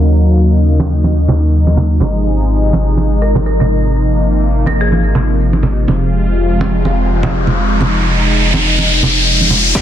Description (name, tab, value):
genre	afro house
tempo	124 BPM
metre	4/4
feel	swing 58% on 16ths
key	unclear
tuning	A4 = 435 Hz
part	warm analog pad	sustained chords	0.0-9.8 s	C3 to F4	-16 LUFS	equal	chorus, sidechain pumping
part	dark detuned saw bass	bass	0.0-9.8 s	F1 to Eb2	-14 LUFS	equal	sidechain pumping
part	congas	percussion	0.8-9.6 s	none	-17 LUFS	right 2 dB	none
part	marimba with hard mallets	melody	3.2-5.3 s	Ab4 to Bb4	-21 LUFS	right 1 dB	low-pass filter, digital delay
part	riser	sound effects	6.6-9.8 s	none	-14 LUFS	equal	none
part	electronic kick drum	drums	9.8 s	none	-13 LUFS	equal	soft clipping on kick, high-pass filter on kick, studio reverb
part	electronic snare drum	drums	9.8 s	none	-17 LUFS	left 1 dB	soft clipping on snare, low-pass filter on snare, studio reverb
room	light reverb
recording	dense, heavily limited modern master, low-pass filter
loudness	-10 LUFS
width	side -10 dB against mid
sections	0.0-9.8 A section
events	filter sweep 0.0-9.8; riser 6.6-9.8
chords	0.0 Ebm7; 2.0 Ab6; 5.9 Fm